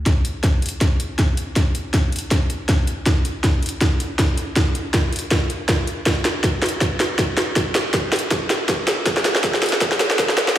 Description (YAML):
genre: future bass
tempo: 160 BPM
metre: 4/4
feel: swing 56% on 16ths, half-time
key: none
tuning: none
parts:
  - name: electronic kick drum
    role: drums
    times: 0.1-10.3 s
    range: none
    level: -20 LUFS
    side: equal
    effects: none
  - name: trap drum kit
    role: drums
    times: 0.1-10.5 s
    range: hi-hat, snare drum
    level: -19 LUFS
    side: equal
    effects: low-pass filter on snare, low-pass filter on hats
room: wet lush hall reverb, RT60 1.9 s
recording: played on a big sound system in a bare room, large studio reverb, high-pass filter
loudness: -17 LUFS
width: side -12 dB against mid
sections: 0.1-10.6 A section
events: build-up 0.1-10.6; drum fill 0.1-10.6; filter sweep 0.1-10.6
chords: none